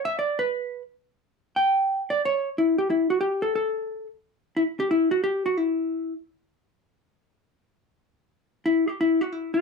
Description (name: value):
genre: jazz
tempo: 177 BPM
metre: 3/4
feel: swing 62% on 8ths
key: unclear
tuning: A4 = 438 Hz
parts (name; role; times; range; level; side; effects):
- vintage hollow-body jazz guitar; solo; 0.0-6.1, 8.7-9.6 s; E4 to G5; -22 LUFS; left 1 dB; none
room: moderate studio reverb, RT60 0.5 s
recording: none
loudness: -22 LUFS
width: side -4 dB against mid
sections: 0.0-2.5 A section; 2.5-9.6 B section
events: hollow-body jazz guitar solo 0.0-2.5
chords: none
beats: 0.17 | 0.51 0.85 1.19 | 1.52 1.86 2.20 | 2.54 2.88 3.21 | 3.55 3.89 4.23 | 4.57 4.91 5.25 | 5.58 5.92 6.26 | 6.60 6.94 7.28 | 7.62 7.95 8.29 | 8.63 8.97 9.31